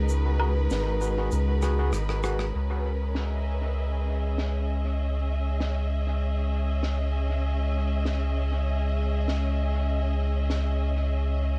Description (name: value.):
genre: ambient dub.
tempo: 98 BPM.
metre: 4/4.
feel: swing 53% on 16ths.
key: C# dorian.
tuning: A4 = 438 Hz.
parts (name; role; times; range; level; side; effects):
warm symphonic string section; sustained chords; 0.0-11.6 s; G#3 to E5; -36 LUFS; equal; cassette tape.
round analog bass; bass; 0.0-11.6 s; G#1 to C#2; -28 LUFS; equal; none.
drifting glass-harmonics texture; texture; 0.0-11.6 s; G#3 to G#4; -43 LUFS; equal; chorus, built-in reverb, cassette tape.
shaker, woodblock, snare drum and rim click; drums; 0.1-10.6 s; none; -38 LUFS; equal; low-pass filter on snare, cassette tape, low-pass filter on perc, low-pass filter on room, dub echo.
overdriven tine electric piano; stabs; 0.4-2.4 s; F#4 to B4; -37 LUFS; equal; cassette tape, dub echo.
room: little or no reverb.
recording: home recording on cassette.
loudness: -27 LUFS.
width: mono.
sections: 0.0-2.5 A section; 2.5-11.6 B section.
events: drum fill 1.6-2.5; band accent 2.4-2.7.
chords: 0.0 G#m7; 2.5 C#m9.